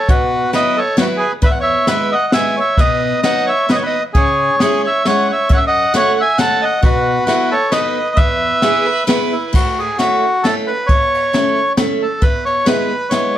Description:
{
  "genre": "musette waltz",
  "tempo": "134 BPM",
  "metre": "3/4",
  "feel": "swing 55% on 8ths",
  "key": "E major, A major from 9.5 s",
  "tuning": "A4 = 440 Hz",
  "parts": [
    { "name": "bandoneon", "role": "melody", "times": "0.0-13.4 s", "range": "E4 to A5", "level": "-15 LUFS", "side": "equal", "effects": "plate reverb" },
    { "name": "picked steel-string acoustic guitar", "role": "accompaniment", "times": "0.1-13.4 s", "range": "E2 to A4", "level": "-20 LUFS", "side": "left 1 dB", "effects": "none" },
    { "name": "jazz brush drum kit", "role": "drums", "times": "0.1-13.2 s", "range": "crash cymbal, kick drum, ride cymbal, snare drum", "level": "-17 LUFS", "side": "equal", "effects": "none" },
    { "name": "warm violin", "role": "second line", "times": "8.6-9.5 s", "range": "G#4 to B4", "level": "-22 LUFS", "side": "right 5 dB", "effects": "none" }
  ],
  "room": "moderate small room reverb, RT60 0.5 s",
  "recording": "none",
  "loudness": "-12 LUFS",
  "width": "side -12 dB against mid",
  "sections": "0.0-9.5 A section; 9.5-13.4 B section",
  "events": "none",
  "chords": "0.1 Bsus4; 1.4 Eadd9; 2.8 B; 4.1 C#m; 5.5 F#m; 6.8 B7sus4; 7.7 B7; 8.2 Eadd9; 9.5 A; 12.2 E"
}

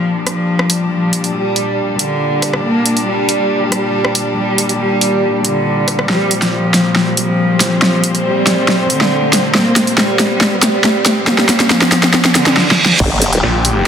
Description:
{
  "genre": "heavy wobble dubstep",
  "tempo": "139 BPM",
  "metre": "4/4",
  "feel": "half-time",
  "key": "G minor",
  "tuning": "A4 = 441 Hz",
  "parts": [
    { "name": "warm cello", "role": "melody", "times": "0.0-12.6 s", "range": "D3 to Bb3", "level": "-16 LUFS", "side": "equal", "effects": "dub echo" },
    { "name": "dark chamber string section", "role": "sustained chords", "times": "0.0-13.9 s", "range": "Bb2 to G4", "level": "-19 LUFS", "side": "left 2 dB", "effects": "sidechain pumping, low-pass filter" },
    { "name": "riser, reverse cymbal and impact", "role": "sound effects", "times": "0.8-13.9 s", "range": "none", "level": "-22 LUFS", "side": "right 2 dB", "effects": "none" },
    { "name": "big-room dance drum kit", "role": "drums", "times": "0.3-13.7 s", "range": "crash cymbal, hi-hat, rim click, snare drum", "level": "-13 LUFS", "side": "equal", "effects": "overdrive" },
    { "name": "formant-sweep wobble bass", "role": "bass", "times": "13.0-13.4 s", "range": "G1", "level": "-15 LUFS", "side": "equal", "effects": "chorus, overdrive" },
    { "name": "electronic kick drum", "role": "drums", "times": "13.0-13.1 s", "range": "none", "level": "-17 LUFS", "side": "equal", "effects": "overdrive" },
    { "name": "snarling distorted saw bass", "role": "bass", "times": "13.4-13.8 s", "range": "Bb1", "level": "-14 LUFS", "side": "equal", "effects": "distortion, overdrive" }
  ],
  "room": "moderate lush hall reverb, RT60 2.5 s",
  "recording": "dense, heavily limited modern master",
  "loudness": "-11 LUFS",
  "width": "side -8 dB against mid",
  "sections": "0.0-13.0 A section",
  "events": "build-up 0.0-13.0; drum fill 6.1-12.6, 12.6-13.0; reverse cymbal 12.1-13.0; impact 13.0-13.9",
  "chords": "0.0 Gm"
}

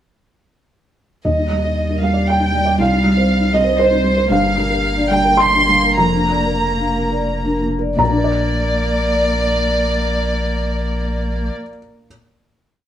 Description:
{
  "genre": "neoclassical piano and strings",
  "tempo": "83-123 BPM",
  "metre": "3/4",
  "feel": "rubato",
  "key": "Bb major",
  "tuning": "A4 = 440 Hz",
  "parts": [
    { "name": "felt-muted upright piano", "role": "accompaniment", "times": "1.2-12.1 s", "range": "C2 to C6", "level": "-17 LUFS", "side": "equal", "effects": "none" },
    { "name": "warm chamber violin section", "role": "melody", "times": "1.3-11.5 s", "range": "C5 to C6", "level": "-19 LUFS", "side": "right 1 dB", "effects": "none" },
    { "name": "warm cello", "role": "second line", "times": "1.3-11.5 s", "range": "G3 to Bb3", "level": "-23 LUFS", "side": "right 1 dB", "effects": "none" },
    { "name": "vibraphone with soft mallets", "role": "arpeggios", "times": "1.3-7.9 s", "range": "C4 to Bb5", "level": "-27 LUFS", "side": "left 2 dB", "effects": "none" },
    { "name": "punchy sub bass", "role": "bass", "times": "1.3-11.5 s", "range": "F1 to Eb2", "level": "-22 LUFS", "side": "left 1 dB", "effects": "none" }
  ],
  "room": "wet studio reverb, RT60 0.8 s",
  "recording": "band playing live in one room",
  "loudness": "-14 LUFS",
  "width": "side -10 dB against mid",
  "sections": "1.3-8.0 theme; 8.0-12.0 final chord",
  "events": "slowing down 3.5-8.0",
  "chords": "1.3 Ebmaj7; 2.8 Cm; 4.3 Gm7; 6.0 Bb/F; 8.0 Bb"
}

